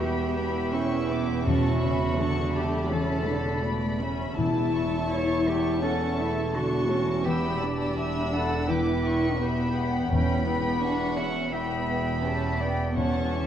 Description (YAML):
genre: cinematic, emotional film score for orchestra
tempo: 83 BPM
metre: 4/4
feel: rubato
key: E dorian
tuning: A4 = 437 Hz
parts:
  - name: warm cello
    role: melody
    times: 0.0-13.5 s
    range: E4 to F#5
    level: -32 LUFS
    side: right 2 dB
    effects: none
  - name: warm studio violin section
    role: melody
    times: 0.0-13.5 s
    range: A5 to E6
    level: -38 LUFS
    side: left 3 dB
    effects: none
  - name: warm symphonic violin section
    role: second line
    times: 0.0-13.5 s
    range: C#5 to B5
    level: -34 LUFS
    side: left 1 dB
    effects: none
  - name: dark symphonic viola section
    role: accompaniment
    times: 0.0-13.5 s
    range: D3 to E4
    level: -30 LUFS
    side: right 1 dB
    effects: none
  - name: concert harp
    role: arpeggios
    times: 0.0-13.5 s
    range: C#3 to F#5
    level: -33 LUFS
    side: left 6 dB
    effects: none
  - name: rich symphonic cello section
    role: bass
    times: 0.0-13.5 s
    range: E2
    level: -33 LUFS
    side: right 2 dB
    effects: none
  - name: warm symphonic double bass section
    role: bass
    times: 0.0-13.5 s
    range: E1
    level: -32 LUFS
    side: right 2 dB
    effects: none
  - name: timpani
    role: percussion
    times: 1.5-5.4, 10.1-13.5 s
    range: E2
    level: -32 LUFS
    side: equal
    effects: none
room: wet scoring stage reverb, RT60 2.0 s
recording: worn, warbling old tape, cassette tape, warbly pitch drift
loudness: -24 LUFS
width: side -9 dB against mid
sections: 0.0-13.5 A section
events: none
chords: 0.0 Em; 1.5 Dmaj7/E; 4.4 A/E; 7.3 G6/E; 10.1 Em; 13.0 Dmaj7/E